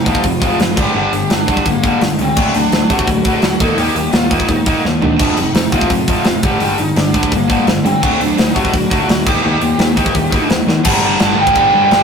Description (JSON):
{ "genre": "punk rock", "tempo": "170 BPM", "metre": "4/4", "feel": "straight", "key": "G minor", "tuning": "A4 = 445 Hz", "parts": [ { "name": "bluesy overdriven lead guitar", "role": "melody", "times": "0.0-12.0 s", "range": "Bb3 to Bb5", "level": "-18 LUFS", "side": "right 1 dB", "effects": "distortion, tape echo" }, { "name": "tight distorted guitar", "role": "riff", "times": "0.0-12.0 s", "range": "F2 to Eb4", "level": "-19 LUFS", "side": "left 5 dB", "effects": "distortion" }, { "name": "tight distorted guitar", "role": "riff", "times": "0.0-12.0 s", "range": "F2 to D4", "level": "-20 LUFS", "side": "right 4 dB", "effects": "distortion" }, { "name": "picked electric bass", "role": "bass", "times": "0.1-12.0 s", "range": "F1 to Eb3", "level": "-22 LUFS", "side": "equal", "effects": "none" }, { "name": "tight metal drum kit", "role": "drums", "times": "0.1-12.0 s", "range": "crash cymbal, hi-hat, kick drum, snare drum, splash cymbal, toms", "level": "-16 LUFS", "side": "equal", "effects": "none" }, { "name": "distorted electric guitar", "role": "riff", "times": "10.8-12.0 s", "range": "G2 to G3", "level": "-19 LUFS", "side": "left 2 dB", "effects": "overdrive" } ], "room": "moderate small room reverb, RT60 0.6 s", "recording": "rough rehearsal-room recording, tube saturation", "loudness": "-11 LUFS", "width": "side -6 dB against mid", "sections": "0.0-10.9 A section; 10.9-12.0 B section", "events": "drum fill 4.8-5.2, 10.7", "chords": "0.0 F5; 0.8 Gm; 2.4 D; 3.6 Eb; 5.2 F5; 6.4 Gm; 8.0 D; 9.3 Eb; 10.9 Gm" }